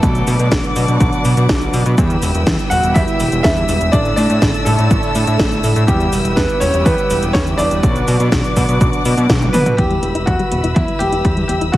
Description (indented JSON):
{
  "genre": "italo disco",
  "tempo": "123 BPM",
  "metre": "4/4",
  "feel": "straight",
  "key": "E minor",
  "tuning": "A4 = 437 Hz",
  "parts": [
    { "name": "bright grand piano", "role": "melody", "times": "0.0-11.8 s", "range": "G3 to F#5", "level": "-20 LUFS", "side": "equal", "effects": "tape echo" },
    { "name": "muted studio string section", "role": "sustained chords", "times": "0.0-11.8 s", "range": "B4 to E6", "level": "-23 LUFS", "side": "left 2 dB", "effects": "none" },
    { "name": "mellow synth brass", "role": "stabs", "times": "0.0-11.8 s", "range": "A2 to A4", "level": "-22 LUFS", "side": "right 2 dB", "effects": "chorus, ping-pong delay" },
    { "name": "fat analog bass", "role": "bass", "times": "0.0-11.8 s", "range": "E1 to B2", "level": "-17 LUFS", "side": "equal", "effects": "none" },
    { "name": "electronic kick drum", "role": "drums", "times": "0.0-11.8 s", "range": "none", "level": "-18 LUFS", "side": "equal", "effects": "overdrive" },
    { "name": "house drum kit", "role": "drums", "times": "0.0-11.8 s", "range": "cabasa, hi-hat, snare drum, toms", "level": "-22 LUFS", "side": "equal", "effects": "overdrive" },
    { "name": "soft round pluck", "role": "arpeggios", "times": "9.8-11.8 s", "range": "D3 to E4", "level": "-24 LUFS", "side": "left 2 dB", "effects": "chorus, ping-pong delay" }
  ],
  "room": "light reverb, digital ambience",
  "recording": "heavily compressed radio sound, multiband compression, vinyl crackle",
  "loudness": "-12 LUFS",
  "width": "side -15 dB against mid",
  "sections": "0.0-9.8 A section; 9.8-11.8 B section",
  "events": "drum fill 9.3-9.8",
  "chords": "0.0 Bm; 2.0 Em; 3.9 Asus4; 5.9 Em; 7.8 Bm; 9.8 Em",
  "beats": "| 0.03 0.52 1.00 1.49 | 1.98 2.47 2.96 3.44 | 3.93 4.42 4.91 5.39 | 5.88 6.37 6.86 7.35 | 7.83 8.32 8.81 9.30 | 9.79 10.27 10.76 11.25 | 11.74"
}